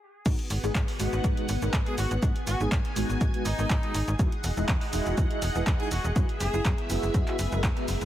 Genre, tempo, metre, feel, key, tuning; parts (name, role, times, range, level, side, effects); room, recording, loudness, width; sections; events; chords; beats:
filtered disco house; 122 BPM; 4/4; swing 54% on 16ths; G# minor; A4 = 440 Hz
mellow synth brass; accompaniment; 0.3-7.9 s; G#3 to B4; -33 LUFS; right 1 dB; chorus, phaser, sidechain pumping
string machine, full ensemble; sustained chords; 0.3-8.1 s; B3 to G#5; -35 LUFS; equal; ensemble chorus, sidechain pumping
slap-like FM bass; bass; 0.3-8.1 s; E1 to G#2; -29 LUFS; equal; sidechain pumping, high-pass filter
electronic kick drum; drums; 0.3-7.7 s; -26 LUFS; equal; high-pass filter on kick, high-pass filter on room
punchy analog drum machine; drums; 0.3-8.1 s; crash cymbal, handclaps, hi-hat, shaker; -35 LUFS; right 1 dB; sidechain pumping on hats, sidechain pumping on perc, sidechain pumping on cymbals
clear horn section; melody; 1.9-6.8 s; D#4 to G#4; -35 LUFS; left 1 dB; sidechain pumping, dub echo
light reverb, digital ambience; heavily compressed radio sound; -24 LUFS; side -12 dB against mid
0.3-8.1 A section
break 0.0; drop 0.3-8.1
0.3 G#m7; 4.2 Emaj9; 6.2 F#9sus4
| 0.26 0.75 1.24 1.73 | 2.23 2.72 3.21 3.70 | 4.19 4.68 5.18 5.67 | 6.16 6.65 7.14 7.63